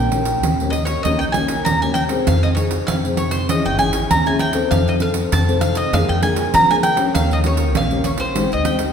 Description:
samba and choro; 98 BPM; 4/4; straight; A4 = 438 Hz
bowl-back mandolin; melody; 0.0-8.9 s; C5 to Bb5; -20 LUFS; equal
nylon-string guitar; accompaniment; 0.0-8.9 s; Bb2 to A4; -21 LUFS; left 3 dB
upright bass; bass; 0.0-8.9 s; Ab1 to F3; -21 LUFS; equal
pandeiro; percussion; 0.1-8.9 s; -22 LUFS; right 4 dB
wet scoring stage reverb, RT60 1.6 s; recorded in a church or concert hall; -15 LUFS; side -7 dB against mid
0.0-8.9 A section
0.0 Eb7; 2.3 Fm7; 3.5 Dbm; 4.7 F7; 5.9 Bb7/F; 7.2 Eb7; 8.4 Abmaj7
0.44 | 1.05 1.66 2.27 2.88 | 3.49 4.10 4.71 5.32 | 5.93 6.54 7.15 7.76 | 8.37

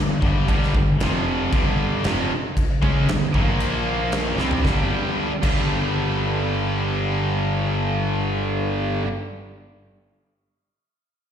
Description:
hard rock; 115 BPM; 4/4; straight; A4 = 440 Hz
distorted electric guitar; riff; 0.0-9.1 s; F2 to D4; -27 LUFS; right 1 dB; overdrive, slapback echo
tight distorted guitar; riff; 0.0-9.1 s; F2 to C#4; -26 LUFS; left 8 dB; distortion
fuzz fingered electric bass; bass; 0.0-9.0 s; F1 to C#2; -25 LUFS; equal; overdrive
huge arena drum kit; drums; 0.2-5.6 s; crash cymbal, kick drum, snare drum, toms; -23 LUFS; equal
heavy high-gain guitar; riff; 0.5-9.1 s; F2 to C#4; -27 LUFS; right 9 dB; distortion, slapback echo
light reverb, studio reverb; live gig heard through the venue's PA, recital hall reverb; -19 LUFS; side -8 dB against mid
0.0-4.7 A section; 4.7-8.8 B section
drum fill 4.4
0.0 G5; 1.0 F5; 1.5 G5; 3.3 Bb5; 4.4 C5; 4.7 G
| 0.48 1.00 1.52 2.04 | 2.56 3.09 3.61 4.13 | 4.65 5.18 5.70 6.22 | 6.74 7.27 7.79 8.31

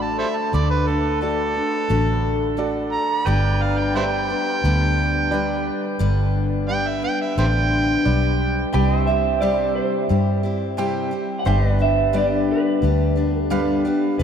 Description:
honky-tonk and classic country; 88 BPM; 4/4; straight; G major; A4 = 442 Hz
overdriven harmonica; second line; 0.0-8.7 s; A4 to Bb5; -24 LUFS; right 2 dB
clear baby grand piano; accompaniment; 0.0-14.1 s; F#4 to G5; -32 LUFS; right 4 dB
picked steel-string acoustic guitar; accompaniment; 0.0-14.2 s; G2 to B4; -23 LUFS; left 2 dB
pedal steel guitar; sustained chords; 0.0-14.2 s; A3 to E5; -32 LUFS; equal; wide subtle chorus
vintage muted fingered electric bass; bass; 0.0-14.2 s; F1 to G2; -22 LUFS; equal
electric guitar through a small old amp; melody; 8.7-14.2 s; B4 to G5; -23 LUFS; right 3 dB
wet cathedral reverb, RT60 7.4 s; in a vast, echoing space; -18 LUFS; side -8 dB against mid
0.0-8.7 A section; 8.7-14.2 B section
harmonica solo 0.0-8.7
0.0 D; 3.3 G; 8.7 C; 11.5 G
| 0.54 1.22 1.90 2.59 | 3.27 3.95 4.64 5.32 | 6.00 6.69 7.37 8.05 | 8.73 9.42 10.10 10.78 | 11.46 12.15 12.83 13.51 | 14.20

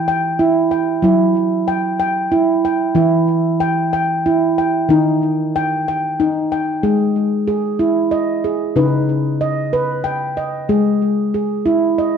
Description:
world meditative, meditative tuned percussion; 62 BPM (dotted quarters); 6/8; straight; A4 = 440 Hz
handpan; solo; 0.0-12.2 s; C#3 to G5; -14 LUFS; right 1 dB; ping-pong delay
wet echo chamber reverb, RT60 1.3 s; dark, warm production; -14 LUFS; side -7 dB against mid
0.0-6.8 A section; 6.8-12.2 B section
0.0 Em; 1.0 Emadd9/F#; 3.0 Em; 4.9 D#; 6.8 G#5; 8.8 C#5; 10.7 G#5
0.06 | 1.03 1.99 | 2.96 3.92 | 4.89 5.86 | 6.82 7.79 | 8.76 9.73 | 10.70 11.66

